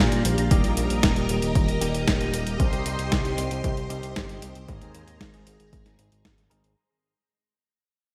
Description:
italo disco; 115 BPM; 4/4; straight; A4 = 441 Hz
string machine, full ensemble; sustained chords; 0.0-6.8 s; G4 to C6; -33 LUFS; equal; phaser, ensemble chorus
clean electric guitar; stabs; 0.0-6.7 s; Ab2 to Bb4; -35 LUFS; equal; low-pass filter, digital delay
chorused synth bass; bass; 0.0-6.8 s; Eb1 to Bb2; -31 LUFS; equal
clean 12-bit digital drum machine; drums; 0.1-6.7 s; hi-hat, snare drum; -29 LUFS; equal; overdrive
electronic kick drum; drums; 0.5-6.4 s; -27 LUFS; equal
moderate lush hall reverb, RT60 1.6 s, digital ambience; bright 1980s-style digital production; -24 LUFS; mono
0.0-6.8 A section
fade-out 0.0-6.8; filter sweep on clean electric guitar 0.0-6.8
0.0 Bb6; 0.5 Eb; 2.6 Cm; 4.7 Abadd9
| 0.51 1.03 1.55 2.08 | 2.60 3.12 3.64 4.16 | 4.68 5.21 5.73 6.25

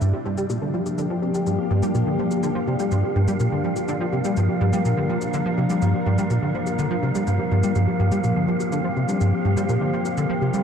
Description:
ambient, sequencer-driven space music; 124 BPM; 4/4; straight; G minor; A4 = 444 Hz
evolving wavetable pad; sustained chords; 0.0-10.6 s; F3 to Bb4; -24 LUFS; left 1 dB; chorus, built-in reverb
concert harp; arpeggios; 0.0-10.6 s; F4 to G5; -42 LUFS; equal
plucky analog bass; riff; 0.0-10.6 s; G2 to G3; -22 LUFS; equal; ensemble chorus, tape echo
shaker and bongos; percussion; 0.0-10.6 s; -38 LUFS; left 4 dB; overdrive, tape echo
wind-like tuned noise texture; texture; 1.1-10.6 s; F5; -32 LUFS; right 5 dB; built-in reverb
wet huge ambient reverb, RT60 8.0 s; dark, warm production; -20 LUFS; side -7 dB against mid
0.0-10.6 A section
0.0 Gm7
| 0.01 0.50 0.98 1.46 | 1.95 2.43 2.92 3.40 | 3.88 4.37 4.85 5.33 | 5.82 6.30 6.79 7.27 | 7.75 8.24 8.72 9.21 | 9.69 10.17

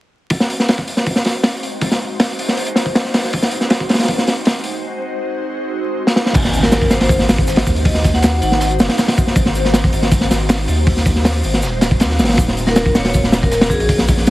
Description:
drum and bass, jungle; 159 BPM; 4/4; straight; A4 = 440 Hz
crunchy breakbeat drum kit; drums; 0.3-14.3 s; crash cymbal, hi-hat, kick drum, snare drum; -14 LUFS; equal; high-pass filter on kick, high-pass filter on hats, high-pass filter on cymbals, high-pass filter on snare, high-pass filter on room
crunchy breakbeat drum kit; drums; 6.3-14.3 s; hi-hat, shaker, snare drum; -29 LUFS; right 1 dB; high-pass filter on hats, high-pass filter on snare, high-pass filter on perc, high-pass filter on room
impact; sound effects; 6.3-7.9 s; -28 LUFS; equal
saturated sub bass; bass; 6.4-14.3 s; Eb1 to Eb2; -19 LUFS; equal
vibraphone with hard mallets; melody; 6.6-8.6, 12.7-13.9 s; Ab4 to Gb5; -21 LUFS; left 1 dB; dub echo
light reverb, small room ambience; heavily compressed radio sound, multiband compression, vinyl crackle; -13 LUFS; side -16 dB against mid
0.3-6.3 A section; 6.3-14.3 B section
break 4.8-6.3; drum fill 6.1; drop 6.3-14.3; impact 6.3-7.9
0.3 Ab7; 12.4 Ebm7
| 0.31 0.69 1.06 1.44 | 1.82 2.19 2.57 2.95 | 3.33 3.70 4.08 4.46 | 4.84 5.21 5.59 5.97 | 6.34 6.72 7.10 7.48 | 7.86 8.23 8.61 8.99 | 9.36 9.74 10.12 10.50 | 10.87 11.25 11.63 12.01 | 12.38 12.76 13.14 13.52 | 13.89 14.27

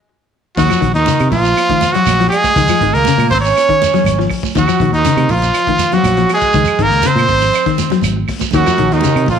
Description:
afrobeat; 121 BPM; 4/4; straight; Eb dorian; A4 = 440 Hz
clear trumpet; melody; 0.6-9.4 s; Eb4 to Db5; -14 LUFS; right 1 dB
warm tenor saxophone; second line; 0.6-9.4 s; Eb3 to Db4; -19 LUFS; right 10 dB
clean electric guitar; arpeggios; 0.6-9.3 s; Db3 to Gb3; -18 LUFS; left 10 dB; wide subtle chorus, tape echo
fingered electric bass; bass; 0.6-9.4 s; Ab1 to C3; -17 LUFS; equal
crunchy breakbeat drum kit; drums; 0.6-9.4 s; hi-hat, kick drum, snare drum; -25 LUFS; left 4 dB
congas; percussion; 0.6-9.4 s; -24 LUFS; right 12 dB
shekere; percussion; 0.6-9.4 s; -25 LUFS; right 6 dB
claves; percussion; 0.7-9.3 s; -27 LUFS; right 15 dB
muted trombone section; second line; 8.6-9.4 s; Eb2 to Gb2; -21 LUFS; right 12 dB
wet spring reverb, RT60 1.5 s, small room ambience; 1960s-style stereo with parts hard left and right; -11 LUFS; side -7 dB against mid
0.6-9.4 A section
stop 0.0-0.6
0.0 N.C.; 0.6 Ebmadd9; 2.6 Dbadd9; 4.6 Ebmadd9; 6.5 Dbsus2; 8.5 Ebm9
0.08 | 0.58 1.07 1.57 2.07 | 2.56 3.06 3.56 4.06 | 4.55 5.05 5.55 6.04 | 6.54 7.04 7.54 8.03 | 8.53 9.03

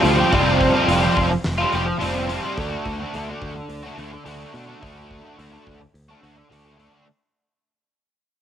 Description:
rock, shoegaze and dream pop; 107 BPM; 4/4; straight; A4 = 438 Hz
cranked stack guitar; riff; 0.0-7.1 s; D3 to F#4; -20 LUFS; equal; overdrive, analog chorus
picked electric bass; bass; 0.0-6.9 s; F1 to B2; -26 LUFS; equal
huge arena drum kit; drums; 0.0-6.9 s; hi-hat, kick drum, snare drum; -29 LUFS; equal
light reverb, studio reverb; home recording on cassette; -18 LUFS; side -9 dB against mid
0.0-7.1 A section
fade-out 0.0-7.1
0.0 Fsus2; 2.6 D
| 0.33 0.89 1.45 2.01 | 2.57 3.14 3.70 4.26 | 4.82 5.38 5.95 6.51

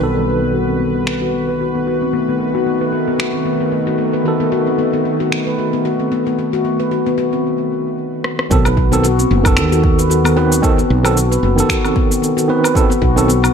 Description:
organic downtempo; 113 BPM; 4/4; swing 56% on 16ths; A4 = 442 Hz
overdriven tine electric piano; accompaniment; 0.0-13.3 s; D#3 to B4; -20 LUFS; right 4 dB; fast tremolo, sidechain pumping, ping-pong delay
bowed-like drone; sustained chords; 0.0-7.4 s; D#3 to B4; -21 LUFS; right 2 dB; built-in reverb, sidechain pumping
handpan; arpeggios; 0.0-13.5 s; B3 to B4; -18 LUFS; left 5 dB; low-pass filter, ping-pong delay
woody fretless electric bass; bass; 0.0-13.5 s; F#1 to D#2; -18 LUFS; right 1 dB; sidechain pumping
electronic finger snaps, rim click, cabasa and woodblock; drums; 1.1-13.5 s; -22 LUFS; left 1 dB
electronic kick drum; drums; 8.5-13.1 s; -16 LUFS; right 1 dB
moderate lush hall reverb, RT60 1.6 s; -13 LUFS; side -7 dB against mid
0.0-8.5 A section; 8.5-13.5 B section
filter sweep on handpan 0.0-8.5; break 7.4-8.5; drum fill 8.2
0.0 B7; 8.5 B7b9
| 0.01 0.54 1.07 1.60 | 2.13 2.67 3.20 3.73 | 4.26 4.79 5.32 5.85 | 6.38 6.91 7.45 7.98 | 8.51 9.04 9.57 10.10 | 10.63 11.16 11.69 12.22 | 12.76 13.29

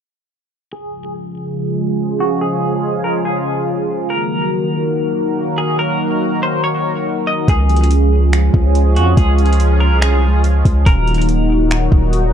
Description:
hip hop, atmospheric cloud-rap; 142 BPM; 4/4; half-time; Db major; A4 = 440 Hz
semi-hollow electric guitar; melody; 0.7-11.3 s; Gb4 to Eb5; -22 LUFS; equal; tremolo, low-pass filter, digital delay
sweeping resonant pad; sustained chords; 0.7-12.3 s; Bb2 to Bb4; -17 LUFS; right 1 dB; chorus, sidechain pumping, low-pass filter
long sustained 808-style bass; bass; 7.5-12.3 s; Eb1 to F2; -13 LUFS; equal
smooth R&B drum kit; drums; 7.5-12.2 s; finger snaps, hi-hat, kick drum; -16 LUFS; equal
little or no reverb; dark, warm production; -13 LUFS; side -8 dB against mid
0.7-7.5 A section; 7.5-12.3 B section
filter sweep 0.7-7.5
0.7 Db; 4.1 Ebm; 7.5 Db; 10.9 Ebm
| 0.72 1.14 1.57 1.99 | 2.41 2.83 3.26 3.68 | 4.10 4.53 4.95 5.37 | 5.79 6.21 6.64 7.06 | 7.48 7.91 8.33 8.75 | 9.17 9.60 10.02 10.44 | 10.86 11.29 11.71 12.13

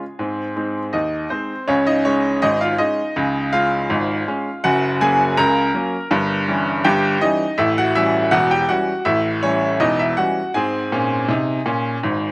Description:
ragtime piano; 81 BPM; 2/4; straight; A4 = 440 Hz
bright baby grand piano; solo; 0.0-12.3 s; E1 to Bb5; -16 LUFS; equal
light reverb; recorded outdoors, with no room sound; -16 LUFS; side -26 dB against mid
0.0-1.7 A section; 1.7-12.3 A section
0.2 Ab; 1.7 Db; 4.6 Gb; 6.1 Gdim7; 7.6 A7; 10.5 Db5/Ab
| 0.19 0.94 | 1.69 2.42 | 3.16 3.90 | 4.64 5.38 | 6.11 6.85 | 7.58 8.32 | 9.06 9.80 | 10.54 11.29 | 12.03

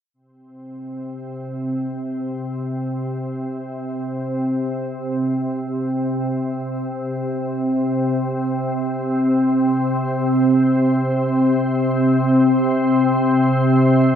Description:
ambient; free time; A4 = 440 Hz
organ-like drone; drone; 0.6-14.2 s; C3 to C4; -18 LUFS; equal; ensemble chorus, built-in reverb
wet cathedral reverb, RT60 6.3 s; -18 LUFS; side -9 dB against mid
0.1-14.2 A section
fade-in on synth drone 0.1-14.2
free time

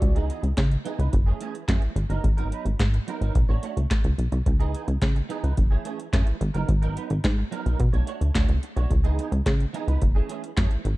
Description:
early-eighties boogie funk; 108 BPM; 4/4; straight; C# minor; A4 = 440 Hz
clean electric guitar; riff; 0.0-10.9 s; E3 to C#5; -34 LUFS; right 6 dB; ensemble chorus
plucky analog bass; bass; 0.0-10.9 s; F#1 to C#3; -24 LUFS; equal
booming analog drum machine; drums; 0.0-11.0 s; handclaps, hi-hat, kick drum, snare drum; -23 LUFS; equal
little or no reverb; dark, warm production; -22 LUFS; side -19 dB against mid
0.0-11.0 A section
0.0 C#m9; 1.1 F#m9; 2.0 G#m9; 3.4 Bm9; 4.5 C#m9; 5.6 F#m9; 6.4 G#m9; 7.8 Bm9; 8.9 C#m9; 10.0 F#m9
| 0.02 0.57 1.13 1.69 | 2.24 2.80 3.35 3.91 | 4.46 5.02 5.58 6.13 | 6.69 7.24 7.80 8.35 | 8.91 9.46 10.02 10.57

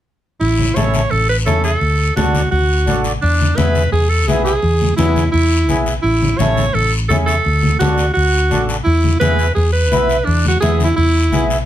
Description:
latin, cumbia; 170 BPM; 4/4; straight; A major; A4 = 440 Hz
edgy alto saxophone; melody; 0.4-11.5 s; D4 to C#5; -17 LUFS; right 2 dB
hollow-body short-scale fingered electric bass; bass; 0.4-11.6 s; A1 to E2; -16 LUFS; equal
congas; percussion; 0.4-11.5 s; -21 LUFS; left 2 dB
guiro; percussion; 0.4-11.7 s; -28 LUFS; left 5 dB
mellow accordion; accompaniment; 0.8-11.6 s; B3 to B4; -20 LUFS; left 1 dB
light reverb; -13 LUFS; side -12 dB against mid
0.4-11.7 A section
0.4 A; 1.8 D; 3.2 E; 6.0 A; 7.5 D; 8.9 E
| 0.41 0.76 1.11 1.47 | 1.82 2.17 2.52 2.87 | 3.23 3.58 3.93 4.28 | 4.63 4.99 5.34 5.69 | 6.04 6.40 6.75 7.10 | 7.45 7.80 8.16 8.51 | 8.86 9.21 9.57 9.92 | 10.27 10.62 10.97 11.33

